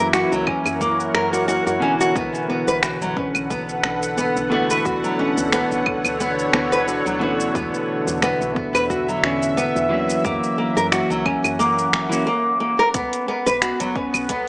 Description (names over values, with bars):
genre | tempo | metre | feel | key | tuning
organic downtempo | 89 BPM | 4/4 | swing 55% on 16ths | B minor | A4 = 441 Hz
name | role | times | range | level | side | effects
clean electric guitar | accompaniment | 0.0-12.3 s | B2 to F#4 | -26 LUFS | equal | sidechain pumping, tape echo
bowed-like drone | sustained chords | 0.0-14.5 s | D3 to F#5 | -25 LUFS | equal | built-in reverb, sidechain pumping
nylon-string guitar | arpeggios | 0.0-14.5 s | F#3 to B4 | -21 LUFS | equal | tape echo
woody FM bass | bass | 0.0-14.5 s | F#1 to F#2 | -33 LUFS | equal | none
deep house drum kit | drums | 0.1-14.4 s | claves, finger snaps, hi-hat, shaker | -23 LUFS | equal | none
electronic kick drum | drums | 0.5-14.4 s | none | -30 LUFS | equal | none
room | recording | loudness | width
moderate lush hall reverb, RT60 2.0 s | dry, gritty hardware recording, small speaker sound | -18 LUFS | side -25 dB against mid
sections
0.0-12.9 A section; 12.9-14.5 B section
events
none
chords
0.0 F#7; 2.2 Bm7; 4.9 Dmaj7; 7.6 E5; 10.2 F#7; 12.9 B7(no3)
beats
0.14 0.81 1.48 | 2.16 2.83 3.51 4.18 | 4.86 5.53 6.20 6.88 | 7.55 8.22 8.90 9.57 | 10.25 10.92 11.60 12.27 | 12.94 13.62 14.29